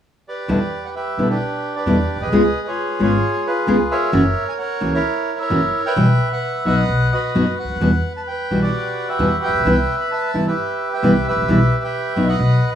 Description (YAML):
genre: tango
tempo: 131 BPM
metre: 4/4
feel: rubato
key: E minor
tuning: A4 = 439 Hz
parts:
  - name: bandoneon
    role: melody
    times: 0.3-12.8 s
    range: D4 to B5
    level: -20 LUFS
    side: right 1 dB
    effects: plate reverb
  - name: nylon-string guitar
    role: accompaniment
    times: 0.5-12.3 s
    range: B2 to G#4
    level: -18 LUFS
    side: left 1 dB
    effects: plate reverb
  - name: upright bass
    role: bass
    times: 0.5-12.6 s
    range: F#1 to E2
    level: -21 LUFS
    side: equal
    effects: none
room: wet studio ambience, RT60 0.5 s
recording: rough home demo mix, small room ambience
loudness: -16 LUFS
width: side -9 dB against mid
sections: 0.5-12.8 A section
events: none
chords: 0.5 Em7; 2.3 C#7; 4.1 F#7; 6.0 Em/B; 6.9 B; 7.8 Emadd9; 9.7 Cmaj7; 11.5 Em/B